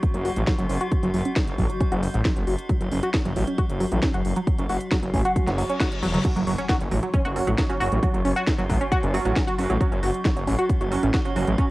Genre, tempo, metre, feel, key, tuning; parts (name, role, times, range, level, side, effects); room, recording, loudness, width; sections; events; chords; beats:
driving peak-time techno; 135 BPM; 4/4; straight; F# minor; A4 = 443 Hz
tight sequenced synth; riff; 0.0-11.7 s; F#3 to F#4; -27 LUFS; right 1 dB; chorus, phaser, tube saturation, sidechain pumping, cassette tape, analog delay
metallic inharmonic drone; drone; 0.0-11.7 s; F#3 to F#4; -32 LUFS; left 1 dB; chorus, built-in reverb, phaser, sidechain pumping, cassette tape
electronic kick drum; drums; 0.0-11.7 s; -24 LUFS; equal
techno drum kit; drums; 0.0-11.7 s; crash cymbal, hi-hat, snare drum, toms; -31 LUFS; equal
detuned saw bass; bass; 0.1-11.6 s; E1 to A1; -25 LUFS; equal; sidechain pumping
reverse cymbal and impact; sound effects; 5.5-8.0 s; -36 LUFS; left 2 dB
rave stab; stabs; 6.2-11.7 s; F#3 to F#4; -29 LUFS; right 4 dB; chorus, built-in reverb, sidechain pumping, cassette tape, analog delay
light reverb, digital ambience; home recording on cassette; -21 LUFS; side -19 dB against mid
0.0-6.2 A section; 6.2-11.7 B section
filter sweep on synth arpeggio sound 0.0-6.2; reverse cymbal 5.5-6.2; drum fill 6.0; drop 6.2-11.7; impact 6.2-8.0
0.0 F#5
0.03 0.47 | 0.92 1.36 1.80 2.25 | 2.69 3.14 3.58 4.03 | 4.47 4.92 5.36 5.80 | 6.25 6.69 7.14 7.58 | 8.03 8.47 8.92 9.36 | 9.80 10.25 10.69 11.14 | 11.58